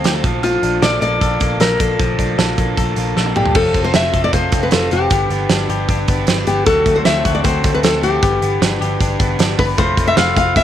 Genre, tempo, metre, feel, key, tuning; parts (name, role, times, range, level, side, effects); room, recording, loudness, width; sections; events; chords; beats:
jangly indie pop; 154 BPM; 4/4; straight; A4 = 445 Hz
crunchy overdriven guitar; accompaniment; 0.0-10.6 s; Bb2 to C5; -25 LUFS; right 11 dB
direct-recorded clean electric guitar; arpeggios; 0.0-10.6 s; F3 to A4; -22 LUFS; left 10 dB
vintage muted picked electric bass; bass; 0.0-10.6 s; F1 to D2; -21 LUFS; equal
big rock drum kit; drums; 0.0-10.6 s; crash cymbal, hi-hat, kick drum, snare drum, toms; -18 LUFS; right 3 dB
nylon-string guitar; melody; 0.4-10.6 s; F4 to F5; -18 LUFS; left 2 dB; tape echo
glockenspiel with rubber mallets; second line; 0.4-3.4, 9.6-10.6 s; B5 to D7; -24 LUFS; right 1 dB
light reverb, studio ambience; 1960s-style stereo with parts hard left and right; -13 LUFS; side -10 dB against mid
0.0-3.6 A section; 3.6-10.6 B section
drum fill 3.2-3.6
0.2 Bbmaj7; 3.6 F; 5.1 G; 6.7 D7; 8.2 G; 9.8 F
0.04 | 0.43 0.82 1.21 1.60 | 1.99 2.38 2.77 3.16 | 3.55 3.94 4.33 4.72 | 5.11 5.50 5.89 6.28 | 6.67 7.06 7.45 7.84 | 8.22 8.61 9.00 9.39 | 9.78 10.17 10.56